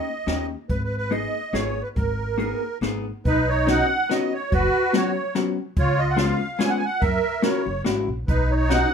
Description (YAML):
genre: musette waltz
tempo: 143 BPM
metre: 3/4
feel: straight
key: G# harmonic minor, B major from 3.2 s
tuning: A4 = 444 Hz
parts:
  - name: musette accordion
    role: melody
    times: 0.0-8.9 s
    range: D#4 to G#5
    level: -23 LUFS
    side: right 2 dB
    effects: none
  - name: vintage hollow-body jazz guitar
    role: accompaniment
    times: 0.0-8.9 s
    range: F#3 to G#4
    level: -25 LUFS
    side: left 4 dB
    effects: none
  - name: upright bass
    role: bass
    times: 0.3-8.8 s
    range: F#1 to F#2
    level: -26 LUFS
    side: equal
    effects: none
  - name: jazz brush drum kit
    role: drums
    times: 0.3-8.8 s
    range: hi-hat, kick drum, snare drum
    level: -28 LUFS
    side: left 1 dB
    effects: none
room: moderate small room reverb, RT60 0.6 s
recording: none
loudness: -20 LUFS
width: side -6 dB against mid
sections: 0.0-3.2 A section; 3.2-8.9 B section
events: none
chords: 0.0 D#7; 0.7 G#madd9; 3.2 Badd9; 4.5 F#sus4; 5.8 C#7; 7.0 F#7; 8.3 Badd9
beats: 0.28 | 0.70 1.12 1.54 | 1.96 2.39 2.82 | 3.25 3.67 4.09 | 4.51 4.93 5.35 | 5.76 6.18 6.60 | 7.02 7.44 7.86 | 8.28 8.70